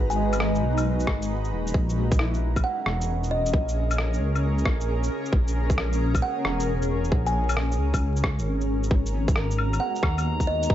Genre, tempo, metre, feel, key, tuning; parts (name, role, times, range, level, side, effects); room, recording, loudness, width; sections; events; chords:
future garage; 134 BPM; 4/4; swing 66% on 16ths; A4 = 440 Hz
felt-muted upright piano; accompaniment; 0.0-10.7 s; E4 to D#5; -36 LUFS; left 1 dB; vintage 12-bit sampler grit, sidechain pumping, analog delay
granular cloud pad; sustained chords; 0.0-10.7 s; G#3 to A#5; -30 LUFS; equal; built-in reverb, lush chorus, sidechain pumping
dark detuned saw bass; bass; 0.0-10.7 s; D#1 to D#2; -25 LUFS; equal; sidechain pumping
kalimba; melody; 0.1-10.7 s; D#5 to G#5; -31 LUFS; right 1 dB; diffuse ambient delay
electronic shaker, claves and rim click; drums; 0.1-10.7 s; -31 LUFS; left 1 dB
electronic kick drum; drums; 1.1-10.7 s; -23 LUFS; equal; overdrive
drifting glass-harmonics texture; texture; 9.3-10.7 s; A#5; -35 LUFS; left 1 dB; chorus, built-in reverb
light reverb; vinyl crackle, nothing above 7.8 kHz; -22 LUFS; side -12 dB against mid
0.0-8.9 A section; 8.9-10.7 B section
0.0 G#m9; 1.7 A#m7b5; 8.9 G#m9